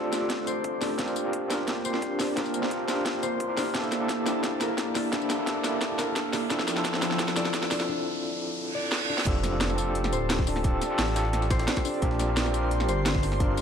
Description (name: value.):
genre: liquid drum and bass.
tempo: 174 BPM.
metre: 4/4.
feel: straight.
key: F major.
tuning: A4 = 440 Hz.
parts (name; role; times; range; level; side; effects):
overdriven tine electric piano; accompaniment; 0.0-13.6 s; Bb3 to A5; -30 LUFS; equal; medium tremolo, tape echo.
airy breathy pad; sustained chords; 0.0-13.6 s; F3 to C6; -33 LUFS; equal; chorus, sidechain pumping.
concert harp; arpeggios; 0.0-13.6 s; D4 to D5; -35 LUFS; left 4 dB; low-pass filter, digital delay.
riser, reverse cymbal and impact; sound effects; 4.2-10.6 s; none; -38 LUFS; right 2 dB; none.
drum and bass drum kit; drums; 0.1-13.6 s; crash cymbal, hi-hat, snare drum, tambourine; -30 LUFS; equal; high-pass filter on hats, high-pass filter on snare, high-pass filter on toms, high-pass filter on perc, high-pass filter on cymbals.
electronic kick drum; drums; 0.3-13.5 s; none; -29 LUFS; equal; high-pass filter on kick.
dark detuned saw bass; bass; 9.3-13.6 s; D1 to Bb1; -29 LUFS; equal; tube saturation.
jungle sampler-style drum kit; drums; 9.3-13.6 s; hi-hat, snare drum; -39 LUFS; equal; none.
room: moderate digital room reverb, RT60 1.1 s.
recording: dark, warm production.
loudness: -25 LUFS.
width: side -7 dB against mid.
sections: 0.0-9.3 A section; 9.3-13.6 B section.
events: build-up 0.0-9.3; drum fill 0.0-7.9, 8.9-9.3; filter sweep on harp 0.0-9.3; break 7.9-9.3; reverse cymbal 8.6-9.3; drop 9.3-13.6; impact 9.3-10.6.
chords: 0.0 F69; 1.0 Bb69; 3.6 C13; 6.5 Dm7; 9.3 F69; 12.0 Bb69.